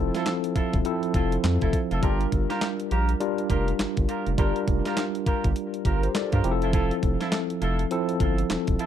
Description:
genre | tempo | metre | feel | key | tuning
R&B, new jack swing | 102 BPM | 4/4 | swing 61% on 16ths | G dorian | A4 = 441 Hz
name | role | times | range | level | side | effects
bright tine electric piano | accompaniment | 0.0-8.9 s | F3 to F5 | -27 LUFS | left 1 dB | slow stereo tremolo
round analog bass | bass | 0.0-8.8 s | E1 to G2 | -26 LUFS | equal | none
mellow horn section | stabs | 0.1-8.9 s | E4 to Bb4 | -32 LUFS | right 3 dB | ping-pong delay
crisp 8-bit digital drum machine | drums | 0.1-8.9 s | handclaps, hi-hat, kick drum, snare drum | -27 LUFS | equal | overdrive
room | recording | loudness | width
light reverb | dark, warm production | -22 LUFS | side -10 dB against mid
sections
0.0-8.9 A section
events
none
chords
0.0 Fmaj7; 2.0 Gm7; 6.4 Fmaj7

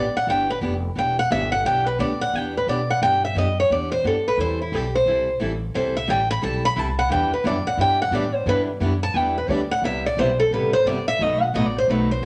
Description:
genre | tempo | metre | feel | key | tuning
acoustic string swing (jazz manouche) | 176 BPM | 4/4 | swing 61% on 8ths | E minor | A4 = 438 Hz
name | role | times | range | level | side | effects
picked steel-string acoustic guitar | melody | 0.0-12.2 s | E4 to B5 | -23 LUFS | equal | none
picked steel-string acoustic guitar | accompaniment | 0.0-12.2 s | B2 to A4 | -30 LUFS | equal | none
upright bass | bass | 0.0-12.2 s | E1 to B2 | -30 LUFS | equal | none
picked steel-string acoustic guitar | accompaniment | 7.1-12.2 s | B2 to B4 | -31 LUFS | equal | none
room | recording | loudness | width
moderate studio reverb, RT60 0.8 s | none | -22 LUFS | mono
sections
0.0-12.2 A section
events
steel-string acoustic guitar solo 0.0-12.2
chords
0.0 Em7; 4.4 Am7; 7.1 Em7; 9.8 Cmaj7; 11.2 B7

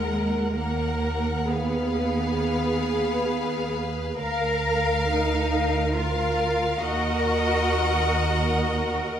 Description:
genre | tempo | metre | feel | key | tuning
classical, slow romantic movement for string orchestra | 67 BPM | 3/4 | rubato | Eb minor | A4 = 440 Hz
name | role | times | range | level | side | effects
rich studio violin section | melody | 0.0-9.2 s | F5 to Gb5 | -32 LUFS | left 3 dB | none
clear studio violin section | second line | 0.0-9.2 s | Bb4 to F5 | -30 LUFS | left 3 dB | none
rich studio viola section | accompaniment | 0.0-9.2 s | Ab4 to Bb4 | -28 LUFS | equal | none
rich studio cello section | bass | 0.0-9.0 s | Ab3 to Bb4 | -28 LUFS | right 2 dB | none
rich studio double bass section | bass | 0.0-9.2 s | D2 to Eb2 | -28 LUFS | right 2 dB | none
room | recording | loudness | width
wet recital hall reverb, RT60 1.3 s | none | -22 LUFS | side -9 dB against mid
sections
0.0-9.2 A section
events
none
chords
0.0 Ebm; 1.5 Fm7b5/Eb; 4.2 Bb/D; 6.8 Ebm

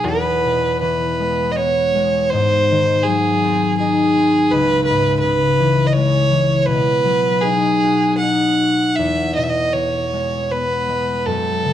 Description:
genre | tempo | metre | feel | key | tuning
celtic folk, Celtic slow air | 80 BPM | 3/4 | rubato | E major | A4 = 438 Hz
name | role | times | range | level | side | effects
clear fiddle | melody | 0.0-11.7 s | G#4 to F#5 | -17 LUFS | right 2 dB | none
concert harp | accompaniment | 0.0-11.7 s | C#2 to F#4 | -18 LUFS | left 3 dB | none
room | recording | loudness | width
moderate recital hall reverb, RT60 1.6 s | dark, warm production | -15 LUFS | side -11 dB against mid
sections
0.0-11.7 A section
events
none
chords
0.0 E; 2.3 G#7; 4.5 C#m; 6.7 B6; 9.0 E

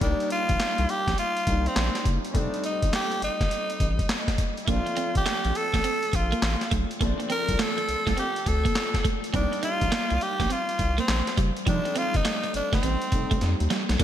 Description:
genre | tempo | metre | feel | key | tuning
R&B, new jack swing | 103 BPM | 4/4 | swing 65% on 16ths | unclear | A4 = 436 Hz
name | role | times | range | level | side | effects
raspy tenor saxophone | melody | 0.0-14.0 s | C4 to Bb4 | -28 LUFS | equal | ping-pong delay
clear grand piano | accompaniment | 0.0-14.0 s | F3 to Eb4 | -33 LUFS | left 3 dB | ensemble chorus
round analog bass | bass | 0.0-14.0 s | F1 to F2 | -27 LUFS | equal | none
boom bap sampler-style drum kit | drums | 0.0-14.0 s | crash cymbal, handclaps, hi-hat, kick drum, snare drum | -28 LUFS | equal | gated reverb
clean electric guitar | riff | 4.7-14.0 s | F3 to Eb4 | -31 LUFS | right 5 dB | wide subtle chorus
room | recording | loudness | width
moderate plate reverb, RT60 2.9 s | bright 1980s-style digital production | -23 LUFS | side -11 dB against mid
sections
0.0-14.0 A section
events
drum fill 13.4-14.0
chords
0.0 Cm9; 2.3 F9 (rootless); 4.7 Bbmaj9; 9.3 Cm9; 11.7 F9

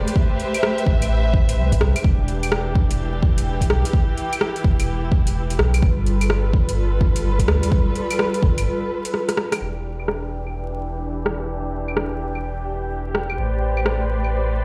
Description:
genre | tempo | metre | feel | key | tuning
future garage | 127 BPM | 4/4 | swing 63% on 16ths | E phrygian | A4 = 440 Hz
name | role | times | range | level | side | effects
warm studio string section | sustained chords | 0.0-14.6 s | E3 to E5 | -28 LUFS | equal | sidechain pumping, low-pass filter
soft dub sub bass | bass | 0.0-14.6 s | E1 to D2 | -25 LUFS | equal | sidechain pumping
deep house drum kit | drums | 0.1-14.3 s | claves, hi-hat, rim click | -27 LUFS | equal | overdrive, low-pass filter on hats, studio reverb, low-pass filter on snare, low-pass filter on perc
electronic kick drum | drums | 0.2-8.5 s | none | -21 LUFS | equal | overdrive, studio reverb
room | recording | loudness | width
digital ambience | played on a big sound system in a bare room, large studio reverb, vinyl crackle | -21 LUFS | mono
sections
0.0-9.6 A section; 9.6-14.6 B section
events
break 8.7-9.6; drum fill 9.1-9.6; filter sweep on drum 9.6-14.6; filter sweep on string section 9.6-14.6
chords
0.0 Am9; 2.0 Em7; 5.8 G9; 9.6 Em7; 13.4 Am11

